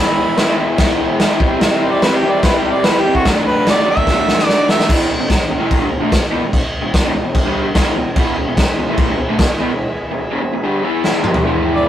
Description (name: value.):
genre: garage rock duo or trio.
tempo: 146 BPM.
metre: 4/4.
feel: straight.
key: E mixolydian.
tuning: A4 = 439 Hz.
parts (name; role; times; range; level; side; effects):
warm harmonica; melody; 0.0-4.9, 11.7-11.9 s; E4 to E5; -17 LUFS; right 1 dB; overdrive.
combo organ; sustained chords; 0.0-4.9, 8.1-11.9 s; E4 to E5; -27 LUFS; right 1 dB; none.
raw garage guitar; riff; 0.0-11.9 s; E2 to E4; -17 LUFS; equal; overdrive.
raw garage drum kit; drums; 0.4-11.4 s; crash cymbal, kick drum, snare drum, toms; -16 LUFS; equal; none.
room: light reverb.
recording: rough rehearsal-room recording, warm saturation.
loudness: -13 LUFS.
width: side -11 dB against mid.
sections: 0.0-4.9 A section; 4.9-11.4 B section.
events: drum fill 4.1-4.9, 11.0-11.4; break 9.8-11.4.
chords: 0.0 E; 1.4 C; 3.3 D; 4.9 E.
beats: 0.39 0.80 1.21 | 1.62 2.03 2.44 2.85 | 3.26 3.67 4.08 4.49 | 4.90 5.31 5.72 6.12 | 6.54 6.94 7.35 7.76 | 8.17 8.58 8.99 9.40 | 9.81 10.22 10.63 11.04 | 11.45 11.86.